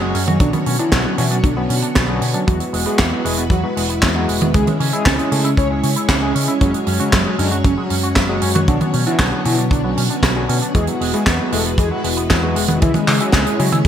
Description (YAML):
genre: italo disco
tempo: 116 BPM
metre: 4/4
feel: straight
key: unclear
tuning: A4 = 440 Hz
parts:
  - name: mellow synth brass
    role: melody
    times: 0.0-13.9 s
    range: C#3 to C#5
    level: -22 LUFS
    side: right 2 dB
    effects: chorus, ping-pong delay, shimmer reverb
  - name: string machine, full ensemble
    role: sustained chords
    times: 0.0-13.9 s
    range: D3 to C#5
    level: -24 LUFS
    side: equal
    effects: ensemble chorus, shimmer reverb
  - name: electric guitar with an envelope filter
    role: arpeggios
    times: 0.0-13.9 s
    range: E3 to F#4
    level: -28 LUFS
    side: right 2 dB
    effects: ping-pong delay, shimmer reverb
  - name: overdriven tine electric piano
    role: stabs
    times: 0.0-13.8 s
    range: F#3 to G#4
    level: -24 LUFS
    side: left 3 dB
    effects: fast tremolo, shimmer reverb
  - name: hollow-body short-scale fingered electric bass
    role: bass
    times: 0.0-13.9 s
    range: E1 to C#3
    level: -21 LUFS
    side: equal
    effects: none
  - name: tight funk drum kit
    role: drums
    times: 0.1-13.9 s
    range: handclaps, hi-hat, snare drum, toms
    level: -19 LUFS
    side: right 1 dB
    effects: gated reverb
  - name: kick drum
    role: drums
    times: 0.4-13.9 s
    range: none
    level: -19 LUFS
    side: equal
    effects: none
room: light reverb, small room ambience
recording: bright 1980s-style digital production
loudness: -14 LUFS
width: side -9 dB against mid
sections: 0.0-13.9 A section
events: none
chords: 0.4 Bmadd9; 2.5 Eadd9; 4.5 C#m; 6.6 F#sus2; 8.7 Bmadd9; 10.7 Eadd9; 12.8 C#m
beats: | 0.40 0.92 1.44 1.96 | 2.47 2.99 3.51 4.03 | 4.54 5.06 5.58 6.09 | 6.61 7.13 7.65 8.16 | 8.68 9.20 9.71 10.23 | 10.75 11.27 11.78 12.30 | 12.82 13.34 13.85